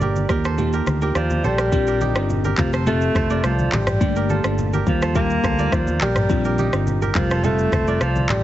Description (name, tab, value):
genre	afrobeats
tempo	105 BPM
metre	4/4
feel	straight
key	Bb major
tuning	A4 = 439 Hz
part	bell-like FM electric piano	accompaniment	0.0-8.1 s	G3 to A4	-25 LUFS	left 1 dB	chorus, phaser
part	kora	riff	0.0-8.4 s	Eb4 to D5	-27 LUFS	right 5 dB	none
part	fingered electric bass	bass	0.0-8.4 s	F1 to Eb2	-22 LUFS	equal	none
part	afro-pop drum kit	drums	0.0-8.4 s	handclaps, kick drum, rim click, shaker, toms	-24 LUFS	equal	none
part	congas	percussion	0.0-8.4 s	none	-28 LUFS	left 1 dB	none
part	warm alto saxophone	melody	1.2-8.4 s	F3 to Bb3	-24 LUFS	equal	none
room	light reverb, studio reverb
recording	heavily compressed radio sound, nothing above 7.9 kHz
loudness	-17 LUFS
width	side -13 dB against mid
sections	0.0-1.7 A section; 1.7-8.4 B section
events	kick muted 0.6-1.7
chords	0.3 Ebadd9; 1.7 Bb6; 2.6 Fadd9; 4.0 Gmadd9; 4.9 Ebadd9; 6.3 Bb6; 7.2 Fadd9